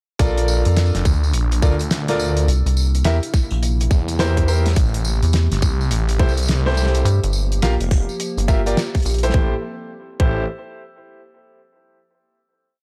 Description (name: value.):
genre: glitch hop.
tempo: 105 BPM.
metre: 4/4.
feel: swing 63% on 16ths.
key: A phrygian.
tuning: A4 = 441 Hz.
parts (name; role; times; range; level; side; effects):
warbly tape-like pad; sustained chords; 0.9-9.6 s; Bb2 to G4; -34 LUFS; equal; chorus, built-in reverb, phaser, sidechain pumping.
clear grand piano; stabs; 0.2-10.4 s; E4 to F5; -27 LUFS; equal; sidechain pumping, analog delay.
phased detuned saw bass; bass; 0.2-10.5 s; F1 to E2; -22 LUFS; equal; phaser.
damped 70s drum kit; drums; 0.2-9.4 s; hi-hat, snare drum, tambourine; -28 LUFS; equal; none.
electronic kick drum; drums; 0.2-10.3 s; none; -19 LUFS; equal; none.
rubbery square bass; bass; 0.7-9.3 s; G1 to G2; -19 LUFS; equal; tube saturation.
room: studio ambience.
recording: dry, gritty hardware recording.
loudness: -19 LUFS.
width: mono.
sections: 0.2-9.3 drop; 9.3-11.6 final chord.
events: drop 0.2-9.3; band accent 8.8.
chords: 0.2 Bbmaj7; 2.5 C7; 4.8 Am7; 7.1 Gm7; 9.3 Am7.